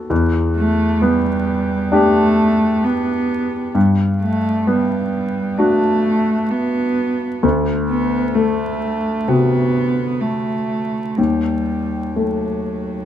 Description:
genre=neoclassical piano and strings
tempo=65 BPM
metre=4/4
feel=rubato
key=E minor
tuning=A4 = 440 Hz
part: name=clear concert grand piano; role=accompaniment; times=0.0-13.1 s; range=D2 to A4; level=-18 LUFS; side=left 1 dB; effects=none
part: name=warm cello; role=second line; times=0.6-13.1 s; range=F#3 to B3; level=-19 LUFS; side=right 1 dB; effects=none
room=moderate spring reverb, RT60 2.4 s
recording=minimal, uncompressed stereo recording, vinyl crackle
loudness=-15 LUFS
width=side -10 dB against mid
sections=0.0-13.1 A section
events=none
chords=0.1 Em7; 3.8 Gmaj7; 7.4 D7; 11.2 B7/D# (rootless)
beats=| 0.10 1.02 1.92 2.84 | 3.75 4.67 5.59 6.52 | 7.43 8.35 9.28 10.22 | 11.18 12.15

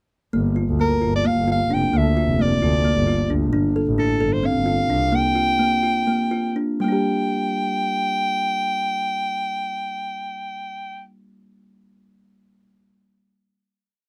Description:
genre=contemporary instrumental, chamber music in an uneven meter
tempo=241-264 BPM (eighths)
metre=7/8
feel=straight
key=G minor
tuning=A4 = 440 Hz
part: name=kalimba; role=arpeggios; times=0.3-11.4 s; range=G3 to A4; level=-25 LUFS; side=equal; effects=none
part: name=warm double bass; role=bass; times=0.3-5.1 s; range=F1 to D2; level=-25 LUFS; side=equal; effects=none
part: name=bright soprano saxophone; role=melody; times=0.8-11.0 s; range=A4 to G5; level=-25 LUFS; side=equal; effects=none
room=light reverb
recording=none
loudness=-21 LUFS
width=mono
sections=0.3-6.8 A section; 6.8-10.3 final chord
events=slowing down 3.5-6.8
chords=0.3 Gm7; 3.5 Dm7/G; 5.1 Gm7; 6.8 Gm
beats=| 0.33 0.56 0.79 1.02 1.25 1.48 1.70 | 1.93 2.16 2.39 2.62 2.84 3.07 3.30 | 3.52 3.75 3.98 4.21 4.43 4.67 4.89 | 5.13 5.36 5.59 5.83 6.07 6.31 6.55 | 6.80 7.05 7.29 7.54 7.79 8.03 8.28 | 8.53 8.78 9.02 9.27 9.52 9.77 10.02

